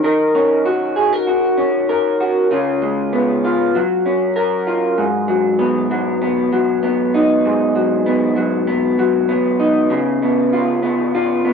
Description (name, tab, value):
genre	indie pop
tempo	97 BPM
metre	4/4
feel	swing 55% on 16ths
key	G# dorian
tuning	A4 = 440 Hz
part	electric guitar through a small old amp	solo	0.0-11.5 s	G#2 to A#4	-14 LUFS	equal	wide subtle chorus, warbly pitch drift, cassette tape, analog delay
room	wet booth ambience, RT60 0.2 s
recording	home recording on cassette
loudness	-14 LUFS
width	side -6 dB against mid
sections	0.0-5.0 A section; 5.0-11.5 B section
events	none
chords	0.0 D#m7; 2.5 C#7; 3.7 F#maj7; 5.0 G#m7; 9.9 C#7